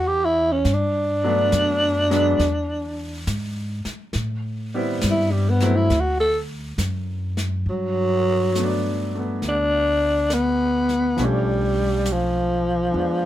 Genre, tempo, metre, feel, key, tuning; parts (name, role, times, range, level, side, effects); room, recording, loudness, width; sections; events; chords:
jazz ballad; 68 BPM; 4/4; swing 67% on 8ths; G major; A4 = 440 Hz
growling tenor saxophone; melody; 0.0-13.3 s; F3 to A4; -20 LUFS; equal
upright bass; bass; 0.0-13.3 s; B1 to A2; -25 LUFS; equal
jazz brush drum kit; drums; 0.6-13.3 s; brushed snare drum, hi-hat, snare drum; -33 LUFS; left 1 dB
clear upright piano; accompaniment; 1.2-13.3 s; F3 to E4; -26 LUFS; equal
light reverb; -19 LUFS; side -13 dB against mid
0.0-7.7 A section; 7.7-13.3 B section
tenor saxophone solo 0.0-7.7
0.0 N.C.; 0.7 Gmaj9; 2.4 E7; 4.2 Am7; 5.9 D; 7.7 Gmaj9; 11.2 Bm7b5